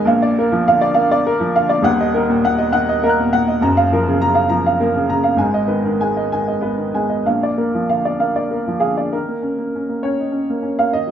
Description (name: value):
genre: neoclassical minimalist piano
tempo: 63-68 BPM (dotted quarters)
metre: 6/8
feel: rubato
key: Eb minor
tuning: A4 = 440 Hz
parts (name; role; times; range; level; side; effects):
- warm upright piano; solo; 0.0-11.1 s; Eb1 to Gb6; -15 LUFS; equal; none
room: moderate stone room reverb, RT60 1.0 s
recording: band playing live in one room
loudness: -15 LUFS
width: side -9 dB against mid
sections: 0.0-9.1 A section; 9.1-11.1 B section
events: none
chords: 0.1 Bb; 1.9 Ebm; 3.6 Gbmaj7; 5.4 Abm; 7.2 Bb; 9.1 Eb7(no3)